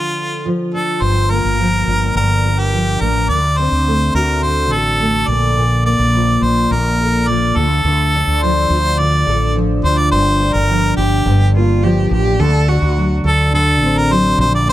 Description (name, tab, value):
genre	pop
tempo	106 BPM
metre	4/4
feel	straight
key	G minor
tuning	A4 = 440 Hz
part	clear harmonica	melody	0.0-14.7 s	F4 to D5	-17 LUFS	equal	none
part	fingerpicked steel-string acoustic guitar	accompaniment	0.0-14.7 s	G2 to Bb4	-18 LUFS	equal	double-tracked left and right
part	mellow fretless electric bass	bass	1.0-14.7 s	G1 to D2	-17 LUFS	equal	none
part	clear cello	second line	11.6-13.1 s	F4 to A4	-20 LUFS	right 2 dB	none
room	small room ambience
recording	none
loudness	-12 LUFS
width	side -14 dB against mid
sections	0.0-1.0 A section; 1.0-10.1 B section; 10.1-14.7 C section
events	none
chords	0.0 Dm; 1.0 Gm7; 3.3 D7; 5.3 Bbmaj7; 7.6 Dm; 10.1 Gm7; 12.4 D7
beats	0.45 | 1.02 1.59 2.16 2.73 | 3.30 3.87 4.44 5.00 | 5.57 6.14 6.71 7.28 | 7.85 8.42 8.99 9.56 | 10.12 10.69 11.26 11.83 | 12.40 12.97 13.53 14.10 | 14.67